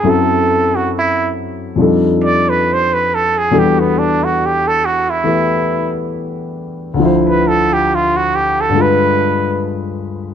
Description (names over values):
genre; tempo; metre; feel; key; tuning
jazz ballad; 69 BPM; 4/4; swing 68% on 8ths; unclear; A4 = 440 Hz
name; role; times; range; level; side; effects
trumpet with straight mute; melody; 0.0-9.7 s; B3 to D5; -15 LUFS; right 3 dB; plate reverb
warm concert grand piano; accompaniment; 0.0-10.3 s; D2 to C5; -15 LUFS; left 2 dB; none
room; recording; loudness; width
light reverb; dark, warm production; -12 LUFS; side -8 dB against mid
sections
0.0-10.3 A section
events
muted trumpet solo 0.0-10.3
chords
0.0 F#m7b5; 1.8 F13; 3.5 Em11; 7.0 Dm9; 8.7 G7b9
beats
| 0.04 0.91 1.78 2.65 | 3.52 4.38 5.25 6.12 | 6.99 7.87 8.75 9.63